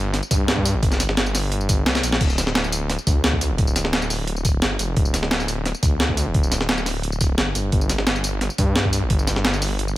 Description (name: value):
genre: liquid drum and bass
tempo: 174 BPM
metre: 4/4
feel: straight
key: unclear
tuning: A4 = 440 Hz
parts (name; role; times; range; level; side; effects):
- swelling detuned saw bass; bass; 0.0-10.0 s; D1 to G2; -23 LUFS; equal; none
- breakbeat sampler-style drum kit; drums; 0.1-9.9 s; crash cymbal, hi-hat, snare drum, tambourine; -22 LUFS; equal; studio reverb
- electronic kick drum; drums; 0.3-9.2 s; none; -21 LUFS; equal; studio reverb
room: little or no reverb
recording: none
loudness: -18 LUFS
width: side -16 dB against mid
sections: 0.0-10.0 A section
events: drum fill 1.9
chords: none